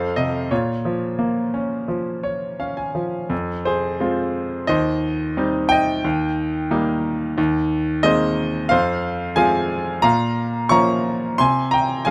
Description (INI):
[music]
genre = classical, lyrical solo piano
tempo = 88 BPM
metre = 4/4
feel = rubato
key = Bb minor, F minor from 3.3 s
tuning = A4 = 442 Hz
[part]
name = bright grand piano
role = solo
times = 0.0-12.1 s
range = Eb2 to Db6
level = -21 LUFS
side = equal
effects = none
[sound]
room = light reverb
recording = close, detailed microphones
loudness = -21 LUFS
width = mono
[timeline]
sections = 0.0-3.3 A section; 3.3-12.1 B section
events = grand piano fill 1.9-3.3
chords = 0.0 F7; 0.5 Bbm; 3.3 Fm; 4.7 Cm/Eb; 6.0 Eb; 7.4 Abadd9/Eb; 8.7 Fm; 10.0 Bbm; 11.4 Fm/C (rootless)